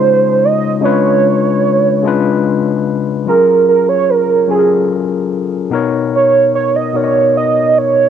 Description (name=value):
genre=R&B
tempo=49 BPM (dotted quarters)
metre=6/8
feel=straight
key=unclear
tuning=A4 = 440 Hz
part: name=warm velvety synth lead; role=melody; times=0.0-8.1 s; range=Ab4 to Eb5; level=-12 LUFS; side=right 6 dB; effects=chorus, cassette tape, plate reverb
part: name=barky tine electric piano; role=accompaniment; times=0.0-8.1 s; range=Cb3 to Eb5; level=-14 LUFS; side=left 7 dB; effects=overdrive, cassette tape
room=wet booth ambience, RT60 0.3 s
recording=home recording on cassette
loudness=-10 LUFS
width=side -8 dB against mid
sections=0.0-3.3 A section; 3.3-8.1 B section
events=soft synth lead solo 3.3-8.1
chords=0.0 Dbmaj9; 0.8 Db7b9; 3.3 Gbmaj9; 5.7 Cbmaj9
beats=| 0.82 2.04 | 3.27 4.49 | 5.72 6.94